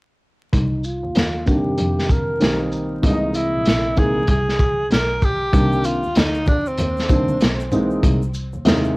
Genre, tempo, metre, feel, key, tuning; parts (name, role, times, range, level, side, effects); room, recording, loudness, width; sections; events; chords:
hip hop, jazz-hop; 96 BPM; 4/4; swing 60% on 16ths; C minor; A4 = 440 Hz
breathy alto saxophone; melody; 0.5-7.7 s; C4 to Bb4; -23 LUFS; equal; low-pass filter, cassette tape, tape echo
rich double bass; bass; 0.5-9.0 s; Bb1 to F2; -24 LUFS; equal
crunchy breakbeat drum kit; drums; 0.5-8.8 s; hi-hat, kick drum, shaker, snare drum; -19 LUFS; equal; cassette tape
dark upright piano; accompaniment; 1.5-9.0 s; C3 to D#5; -21 LUFS; equal; low-pass filter, cassette tape
egg shaker and congas; percussion; 5.5-9.0 s; -30 LUFS; equal
moderate booth ambience, RT60 0.2 s; home recording on cassette, vinyl crackle; -16 LUFS; side -24 dB against mid
0.5-5.5 A section; 5.5-9.0 B section
filter sweep 0.5-5.5
0.5 Cm9; 3.0 C7alt; 5.5 Cm9; 8.0 C7alt